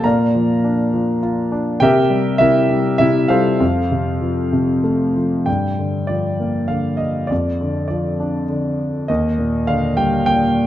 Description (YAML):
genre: classical, lyrical solo piano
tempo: 100 BPM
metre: 3/4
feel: rubato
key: G minor from 5.5 s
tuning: A4 = 440 Hz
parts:
  - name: warm grand piano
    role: solo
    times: 0.0-10.7 s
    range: Eb2 to Bb5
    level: -15 LUFS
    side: equal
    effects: none
room: wet recital hall reverb, RT60 1.7 s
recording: dark, warm production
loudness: -15 LUFS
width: side -12 dB against mid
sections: 0.0-5.5 A section; 5.5-10.7 B section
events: none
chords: 0.0 Bb; 1.8 C7; 3.6 F; 5.5 Gm7; 7.3 Dm/F; 9.1 Ebmaj7